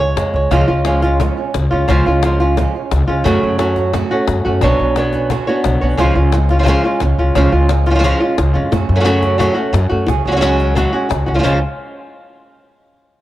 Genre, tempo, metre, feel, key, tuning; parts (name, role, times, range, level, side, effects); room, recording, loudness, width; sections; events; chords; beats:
flamenco; 176 BPM; 4/4; straight; C# phrygian dominant; A4 = 440 Hz
flamenco guitar; melody; 0.0-11.6 s; B2 to C#5; -16 LUFS; equal
flamenco guitar; stabs; 0.0-11.6 s; B2 to G#4; -24 LUFS; right 8 dB
upright bass; bass; 0.0-11.6 s; B1 to F#2; -16 LUFS; equal
cajon; percussion; 0.2-11.5 s; -24 LUFS; left 7 dB
light reverb, small room ambience; home recording on cassette; -12 LUFS; side -14 dB against mid
0.5-11.4 A section; 11.4-12.8 B section
0.0 C#; 3.3 F#m; 4.6 Bmadd9; 6.0 C#; 8.7 F#m; 10.1 C#sus4; 11.4 C#
0.17 | 0.52 0.86 1.20 1.55 | 1.89 2.23 2.57 2.92 | 3.26 3.60 3.94 4.28 | 4.62 4.97 5.31 5.65 | 5.99 6.33 6.67 7.01 | 7.35 7.70 8.04 8.38 | 8.72 9.06 9.40 9.74 | 10.08 10.42 10.76 11.10 | 11.44